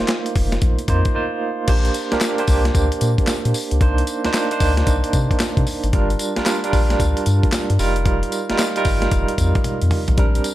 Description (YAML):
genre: R&B, new jack swing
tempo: 113 BPM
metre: 4/4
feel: swing 65% on 16ths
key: Bb major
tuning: A4 = 440 Hz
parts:
  - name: barky tine electric piano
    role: accompaniment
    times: 0.0-10.5 s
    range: G3 to C5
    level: -21 LUFS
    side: right 3 dB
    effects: medium tremolo
  - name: round analog bass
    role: bass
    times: 0.0-10.4 s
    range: F1 to C3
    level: -19 LUFS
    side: left 1 dB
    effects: none
  - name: breakbeat sampler-style drum kit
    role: drums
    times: 0.0-10.5 s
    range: crash cymbal, handclaps, hi-hat, kick drum, snare drum, tambourine, toms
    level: -20 LUFS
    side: left 1 dB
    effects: none
room: digital ambience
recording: none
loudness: -16 LUFS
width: side -14 dB against mid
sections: 0.0-1.7 A section; 1.7-10.5 B section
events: break 1.2-1.7; drum fill 9.7-10.2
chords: 0.0 F7sus4; 1.7 Bb69; 3.8 Cm9; 5.9 Gm7; 7.8 F9sus4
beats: 0.09 0.62 1.15 | 1.69 2.22 2.75 3.28 | 3.81 4.34 4.87 5.40 | 5.93 6.46 7.00 7.53 | 8.06 8.59 9.12 9.65 | 10.18